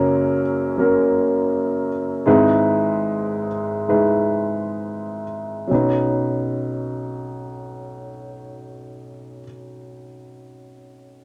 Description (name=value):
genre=folk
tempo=31-43 BPM (dotted quarters)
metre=6/8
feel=straight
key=B major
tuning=A4 = 440 Hz
part: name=dark upright piano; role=accompaniment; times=0.0-11.2 s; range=F#1 to B4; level=-22 LUFS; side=equal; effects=none
room=moderate studio ambience, RT60 0.5 s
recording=none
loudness=-20 LUFS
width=mono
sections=0.0-5.7 A section; 5.7-9.6 B section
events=slowing down 0.0-5.7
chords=0.0 F#; 2.3 Emaj7/G#; 5.7 Badd9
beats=0.78 | 2.26 3.88 | 5.70 7.63